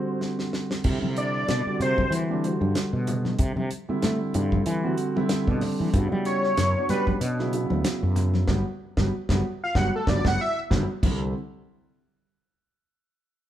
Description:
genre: electric jazz fusion.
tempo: 94 BPM.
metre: 4/4.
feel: swing 55% on 16ths.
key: C lydian.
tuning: A4 = 441 Hz.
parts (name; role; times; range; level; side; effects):
wide unison lead; melody; 0.0-2.1, 6.3-10.6 s; A4 to F#5; -26 LUFS; equal; none.
dark baby grand piano; accompaniment; 0.0-11.3 s; Db3 to C5; -28 LUFS; right 1 dB; none.
damped 70s drum kit; drums; 0.2-11.2 s; crash cymbal, hi-hat, kick drum, snare drum; -27 LUFS; equal; none.
fretless electric bass; bass; 0.8-11.3 s; G1 to A3; -26 LUFS; equal; none.
congas; percussion; 1.0-11.3 s; none; -33 LUFS; left 1 dB; none.
room: light reverb.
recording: band playing live in one room.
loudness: -22 LUFS.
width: side -11 dB against mid.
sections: 0.9-11.0 A section; 11.0-13.5 B section.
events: break 0.0-0.9; drum fill 0.2-0.9; analog synth lead solo 0.9-11.0; band accent 8.5-11.0.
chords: 0.0 Csus2; 0.9 Cmaj9; 5.9 Gmaj7; 11.0 Cadd9.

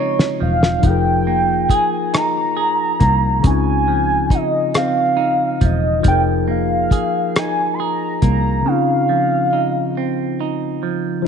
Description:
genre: slow six-eight R&B.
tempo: 46 BPM (dotted quarters).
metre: 6/8.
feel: straight.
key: unclear.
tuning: A4 = 440 Hz.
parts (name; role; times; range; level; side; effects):
warm velvety synth lead; melody; 0.0-10.4 s; Db5 to C6; -18 LUFS; right 1 dB; chorus, slapback echo.
semi-hollow electric guitar; second line; 0.0-11.3 s; Db3 to Ab4; -23 LUFS; right 12 dB; none.
overdriven tine electric piano; accompaniment; 0.0-11.3 s; Db3 to Bb4; -23 LUFS; left 14 dB; none.
cloth-damped thuddy drum kit; drums; 0.2-8.4 s; hi-hat, kick drum, rim click, snare drum; -17 LUFS; left 1 dB; none.
fingered electric bass; bass; 0.4-8.6 s; E1 to Db2; -19 LUFS; left 1 dB; none.
room: light reverb, small room ambience.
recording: 1960s-style stereo with parts hard left and right, nothing above 10.4 kHz.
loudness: -15 LUFS.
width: side -7 dB against mid.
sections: 0.0-11.3 A section.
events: drum fill 0.0-0.8.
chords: 0.0 Dbmaj9; 0.8 Fm11; 3.4 Dbmaj9; 6.1 Fm7; 8.7 Dbmaj9.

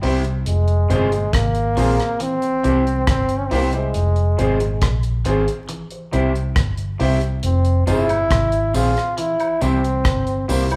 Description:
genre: roots reggae.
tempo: 69 BPM.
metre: 4/4.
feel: straight.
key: F harmonic minor.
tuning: A4 = 440 Hz.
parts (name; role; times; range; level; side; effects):
electric guitar at the edge of break-up; accompaniment; 0.0-10.7 s; C4 to Ab4; -26 LUFS; equal; none.
semi-hollow electric guitar; arpeggios; 0.0-10.6 s; Bb2 to E3; -34 LUFS; equal; none.
warm grand piano; stabs; 0.0-10.8 s; E4 to C5; -30 LUFS; equal; none.
vintage muted fingered electric bass; bass; 0.0-10.8 s; F1 to C2; -22 LUFS; equal; none.
deep reggae drum kit; drums; 0.0-10.8 s; hi-hat, kick drum, rim click; -26 LUFS; equal; none.
clear trombone; melody; 0.5-10.7 s; Ab3 to F4; -24 LUFS; equal; none.
tambourine and woodblock; percussion; 7.9-10.8 s; none; -34 LUFS; equal; none.
room: wet large studio reverb, RT60 1.1 s.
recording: band playing live in one room, vinyl crackle.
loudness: -19 LUFS.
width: mono.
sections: 0.0-10.8 A section.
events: none.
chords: 0.5 Fm; 2.2 C; 3.9 Fm; 5.7 C; 7.4 Fm; 9.2 C.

